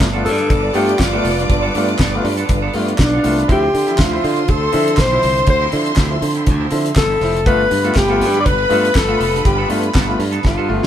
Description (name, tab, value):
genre	disco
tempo	121 BPM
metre	4/4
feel	swing 56% on 16ths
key	unclear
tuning	A4 = 441 Hz
part	clear studio string section	second line	0.0-10.9 s	E4 to D6	-24 LUFS	right 2 dB	none
part	semi-hollow electric guitar	accompaniment	0.0-10.9 s	F3 to A4	-29 LUFS	right 4 dB	none
part	clear studio string section	sustained chords	0.0-10.9 s	D3 to E5	-27 LUFS	equal	none
part	modern bright fingered electric bass	bass	0.0-10.9 s	F1 to D3	-20 LUFS	right 1 dB	none
part	damped 70s drum kit	drums	0.0-10.9 s	handclaps, hi-hat, kick drum, snare drum	-18 LUFS	equal	none
part	clear grand piano	accompaniment	0.1-10.9 s	G2 to F4	-23 LUFS	left 1 dB	none
part	breathy alto saxophone	melody	0.3-10.9 s	D4 to D5	-17 LUFS	left 2 dB	none
room	moderate studio ambience, RT60 0.5 s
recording	band playing live in one room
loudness	-13 LUFS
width	side -10 dB against mid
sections	0.0-10.9 A section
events	alto saxophone solo 0.0-10.9; drum fill 10.4-10.9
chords	0.0 G9; 3.5 Dm9; 7.5 G9